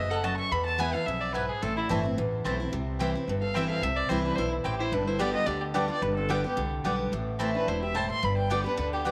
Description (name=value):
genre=bluegrass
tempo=218 BPM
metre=4/4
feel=straight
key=A minor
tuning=A4 = 440 Hz
part: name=rich fiddle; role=melody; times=0.0-9.0 s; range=E4 to C#6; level=-34 LUFS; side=equal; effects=none
part: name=lap resonator guitar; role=second line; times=0.0-9.1 s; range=G3 to E5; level=-40 LUFS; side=equal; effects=none
part: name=picked steel-string acoustic guitar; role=accompaniment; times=0.0-9.1 s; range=E2 to G4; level=-33 LUFS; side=equal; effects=none
part: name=upright bass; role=bass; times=0.0-9.1 s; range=E1 to E2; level=-36 LUFS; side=equal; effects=none
part: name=mandolin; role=stabs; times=0.2-9.1 s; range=B3 to A5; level=-38 LUFS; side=equal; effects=none
room=moderate plate reverb, RT60 3.2 s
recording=none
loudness=-28 LUFS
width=mono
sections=0.0-2.7 A section; 2.7-9.1 B section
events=none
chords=0.0 B7; 0.5 E; 1.6 Am; 4.9 G; 7.1 Am; 8.2 G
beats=0.24 | 0.52 0.80 1.07 1.35 | 1.62 1.90 2.17 2.45 | 2.73 3.00 3.28 3.55 | 3.83 4.10 4.38 4.65 | 4.93 5.20 5.48 5.75 | 6.03 6.30 6.58 6.85 | 7.13 7.40 7.68 7.95 | 8.23 8.51 8.78 9.05